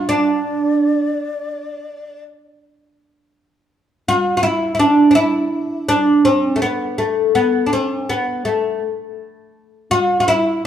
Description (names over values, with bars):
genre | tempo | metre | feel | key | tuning
Arabic maqam ensemble | 82 BPM | 4/4 | straight | D maqam rast | A4 = 440 Hz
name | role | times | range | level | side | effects
oud | melody | 0.0-10.6 s | A3 to F#4-50c | -15 LUFS | equal | none
breathy mellow low ney | second line | 0.0-2.3 s | D5 to F5+45c | -26 LUFS | left 4 dB | none
room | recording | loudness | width
wet large studio reverb, RT60 1.5 s | band playing live in one room | -15 LUFS | side -9 dB against mid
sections
0.0-3.0 A section; 3.0-10.7 B section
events
none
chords
none